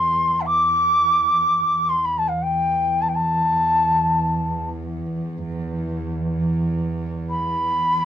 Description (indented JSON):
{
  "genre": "Arabic maqam ensemble",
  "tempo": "free time",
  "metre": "none",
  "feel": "none",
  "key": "E maqam bayati",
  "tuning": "A4 = 440 Hz",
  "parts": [
    { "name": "breathy ney", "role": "melody", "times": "0.0-8.1 s", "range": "E5 to D6", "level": "-18 LUFS", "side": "left 1 dB", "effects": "none" },
    { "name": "dark chamber cello section", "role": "drone", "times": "0.0-8.1 s", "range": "E2", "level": "-26 LUFS", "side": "right 2 dB", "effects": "none" }
  ],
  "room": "light reverb",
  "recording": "worn, warbling old tape, cassette tape, warbly pitch drift",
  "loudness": "-18 LUFS",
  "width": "side -10 dB against mid",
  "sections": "0.0-8.1 A section",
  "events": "none",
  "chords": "none"
}